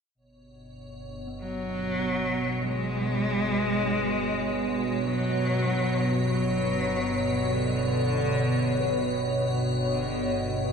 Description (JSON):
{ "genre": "dark ambient drone", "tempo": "free time", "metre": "none", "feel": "none", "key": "unclear", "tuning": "A4 = 441 Hz", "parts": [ { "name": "organ-like drone", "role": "drone", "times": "0.7-10.7 s", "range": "G1 to B2", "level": "-29 LUFS", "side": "left 1 dB", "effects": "ensemble chorus, built-in reverb" }, { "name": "deep dark ambient pad", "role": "sustained chords", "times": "1.2-10.7 s", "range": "B3 to C#5", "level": "-32 LUFS", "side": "right 4 dB", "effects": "chorus, built-in reverb" }, { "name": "icy glass pad", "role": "texture", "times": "0.8-10.7 s", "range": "C#5", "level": "-34 LUFS", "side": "left 1 dB", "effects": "chorus, built-in reverb" }, { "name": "gamelan-type bronze metallophone", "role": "arpeggios", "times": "1.3-10.7 s", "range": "B3 to B4", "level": "-44 LUFS", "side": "left 2 dB", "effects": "none" }, { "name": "rich cello", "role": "melody", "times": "1.4-9.3 s", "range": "D3 to Ab3", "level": "-29 LUFS", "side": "equal", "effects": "tape echo" } ], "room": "wet cathedral reverb, RT60 4.9 s", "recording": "nothing above 10.5 kHz", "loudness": "-24 LUFS", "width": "side -6 dB against mid", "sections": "0.2-10.7 A section", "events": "none", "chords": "0.2 B5" }